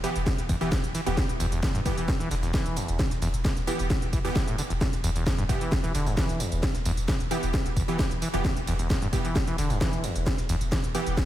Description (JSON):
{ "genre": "driving peak-time techno", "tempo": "132 BPM", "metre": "4/4", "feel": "straight", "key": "E phrygian", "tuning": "A4 = 440 Hz", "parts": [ { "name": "overdriven acid bass", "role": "riff", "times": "0.0-11.0 s", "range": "E2 to E3", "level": "-31 LUFS", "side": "equal", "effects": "sidechain pumping, diffuse ambient delay" }, { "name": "supersaw stab", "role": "stabs", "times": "0.0-11.2 s", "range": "E3 to G4", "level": "-32 LUFS", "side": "right 2 dB", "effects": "sidechain pumping, diffuse ambient delay" }, { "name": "saturated sub bass", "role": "bass", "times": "0.0-11.2 s", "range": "E1", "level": "-32 LUFS", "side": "equal", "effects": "overdrive, sidechain pumping, low-pass filter" }, { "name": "breakbeat sampler-style drum kit", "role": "drums", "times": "0.0-11.3 s", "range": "hi-hat, snare drum", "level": "-47 LUFS", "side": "equal", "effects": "none" }, { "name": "techno drum kit", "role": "drums", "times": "0.0-11.3 s", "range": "hi-hat, ride cymbal, snare drum, tambourine", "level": "-32 LUFS", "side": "equal", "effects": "overdrive, studio reverb" }, { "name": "electronic kick drum", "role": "drums", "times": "0.3-11.3 s", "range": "none", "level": "-27 LUFS", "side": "equal", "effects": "overdrive, studio reverb" } ], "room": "light reverb, digital ambience", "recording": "none", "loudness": "-24 LUFS", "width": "side -13 dB against mid", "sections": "0.0-11.3 A section", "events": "none", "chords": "0.0 Em" }